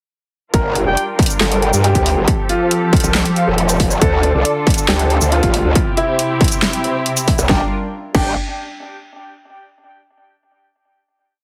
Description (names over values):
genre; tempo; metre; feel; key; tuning
heavy wobble dubstep; 138 BPM; 4/4; half-time; G dorian; A4 = 440 Hz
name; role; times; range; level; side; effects
warm baby grand piano; melody; 0.5-8.3 s; D4 to Bb4; -24 LUFS; equal; tape echo
muted studio string section; sustained chords; 0.5-7.7 s; C3 to Bb4; -24 LUFS; equal; sidechain pumping, low-pass filter
growl bass; bass; 0.5-8.3 s; F1 to G2; -18 LUFS; equal; chorus, overdrive
dubstep drum kit; drums; 0.5-8.2 s; crash cymbal, handclaps, hi-hat, shaker, snare drum; -22 LUFS; equal; none
electronic kick drum; drums; 0.5-8.2 s; none; -19 LUFS; equal; distortion
mellow brass ensemble; stabs; 0.9-8.3 s; C4 to G5; -26 LUFS; equal; tape echo
room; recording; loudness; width
light reverb, small room ambience; heavily compressed radio sound, multiband compression; -16 LUFS; mono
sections
0.5-7.5 drop; 7.5-9.2 final chord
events
drop 0.5-7.5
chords
0.5 Gm7; 2.3 Fadd9; 4.0 Dm; 5.8 C; 7.5 G5